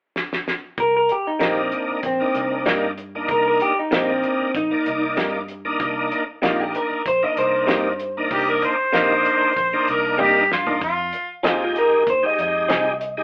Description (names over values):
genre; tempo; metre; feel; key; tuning
straight-eighth soul blues; 96 BPM; 4/4; straight; C minor; A4 = 442 Hz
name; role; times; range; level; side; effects
warm soul drum kit; drums; 0.2-13.2 s; hi-hat, kick drum, snare drum, toms; -28 LUFS; equal; none
electric guitar through a small old amp; melody; 0.8-13.2 s; C4 to Eb5; -23 LUFS; equal; none
vintage muted fingered electric bass; bass; 0.8-13.2 s; Bb1 to G2; -40 LUFS; equal; none
bright tonewheel organ; accompaniment; 1.4-13.2 s; Ab3 to D5; -26 LUFS; equal; slow rotary speaker, overdrive, chorus vibrato
direct-recorded clean electric guitar; stabs; 1.4-12.9 s; C3 to Ab4; -25 LUFS; equal; none
warm harmonica; second line; 8.3-11.3 s; F4 to C5; -21 LUFS; equal; none
room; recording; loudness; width
wet studio reverb, RT60 0.6 s; band playing live in one room, telephone sound; -21 LUFS; mono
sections
0.8-13.2 A section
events
drum fill 0.2-0.8, 10.2-10.8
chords
0.0 N.C.; 0.8 Cm7; 10.8 Fm7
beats
0.16 | 0.78 1.41 2.04 2.66 | 3.29 3.92 4.54 5.17 | 5.80 6.43 7.05 7.68 | 8.31 8.94 9.56 10.19 | 10.81 11.44 12.07 12.69